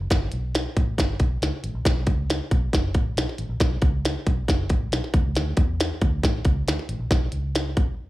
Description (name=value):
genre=uptempo 1960s-style soul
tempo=137 BPM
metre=4/4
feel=straight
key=B minor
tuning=A4 = 440 Hz
part: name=vintage muted fingered electric bass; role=bass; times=0.0-7.9 s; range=F#1 to E2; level=-27 LUFS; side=equal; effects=none
part: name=minimal click drum kit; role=drums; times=0.1-7.9 s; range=hi-hat, kick drum, snare drum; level=-22 LUFS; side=equal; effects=none
room=digital ambience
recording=live gig heard through the venue's PA, club reverb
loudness=-21 LUFS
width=side -17 dB against mid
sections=0.0-8.1 A section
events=none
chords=none